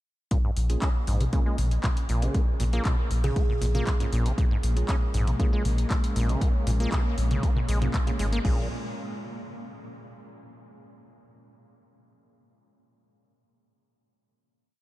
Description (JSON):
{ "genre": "acid house", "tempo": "118 BPM", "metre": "4/4", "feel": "straight", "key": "Bb minor", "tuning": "A4 = 439 Hz", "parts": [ { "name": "acid bass, saw", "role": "riff", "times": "0.3-8.7 s", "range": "Ab2 to Db4", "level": "-33 LUFS", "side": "equal", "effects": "sidechain pumping, tape echo" }, { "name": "booming analog drum machine", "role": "drums", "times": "0.3-8.6 s", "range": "crash cymbal, handclaps, hi-hat, toms", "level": "-35 LUFS", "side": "left 1 dB", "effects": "none" }, { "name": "electronic kick drum", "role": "drums", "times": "0.3-8.6 s", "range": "none", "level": "-25 LUFS", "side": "equal", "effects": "none" }, { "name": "round analog bass", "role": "bass", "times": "0.6-8.7 s", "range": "Ab1 to Bb1", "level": "-25 LUFS", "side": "equal", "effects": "sidechain pumping" }, { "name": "percussive organ stab", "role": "stabs", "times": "0.7-8.6 s", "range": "Bb3 to Ab4", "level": "-38 LUFS", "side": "right 2 dB", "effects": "chorus, tape echo" }, { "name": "buzzing kalimba", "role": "melody", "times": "3.2-4.0 s", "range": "Ab4", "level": "-38 LUFS", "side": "right 5 dB", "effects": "analog delay" }, { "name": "warm analog pad", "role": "sustained chords", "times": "4.4-8.7 s", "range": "Bb2 to Db4", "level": "-37 LUFS", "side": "left 1 dB", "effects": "chorus, sidechain pumping" } ], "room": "light reverb, digital ambience", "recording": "none", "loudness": "-23 LUFS", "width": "side -16 dB against mid", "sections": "0.3-8.4 groove; 8.4-10.5 final chord", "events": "none", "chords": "0.3 Bbm7" }